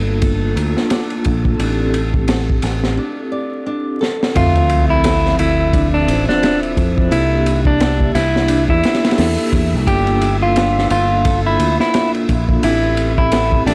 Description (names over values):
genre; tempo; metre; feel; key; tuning
trip hop; 87 BPM; 4/4; swing 58% on 16ths; D minor; A4 = 441 Hz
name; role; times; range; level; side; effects
vibraphone with soft mallets; accompaniment; 0.0-13.7 s; F3 to E5; -24 LUFS; equal; tremolo, tape echo
string machine, cellos; sustained chords; 0.0-13.7 s; A4 to E5; -34 LUFS; equal; ensemble chorus
fingered electric bass; bass; 0.0-13.7 s; G1 to F2; -21 LUFS; equal; none
nylon-string guitar; arpeggios; 0.2-13.7 s; D4 to D5; -29 LUFS; equal; vintage 12-bit sampler grit, tape echo
crunchy breakbeat drum kit; drums; 0.2-13.7 s; hi-hat, kick drum, ride cymbal, snare drum; -22 LUFS; equal; none
clean electric guitar; melody; 4.4-13.7 s; D4 to G4; -20 LUFS; equal; dub echo
sub drop; sound effects; 4.4-7.1 s; none; -23 LUFS; equal; none
room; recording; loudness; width
small room ambience; dry, gritty hardware recording, vinyl crackle; -16 LUFS; mono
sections
0.0-4.4 A section; 4.4-13.7 B section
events
break 3.0-4.4; drum fill 4.0-4.4; impact 4.4-7.1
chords
0.0 Gm7; 1.6 Am7; 4.4 Dm9; 7.1 C9; 9.9 Gm7; 12.6 Am7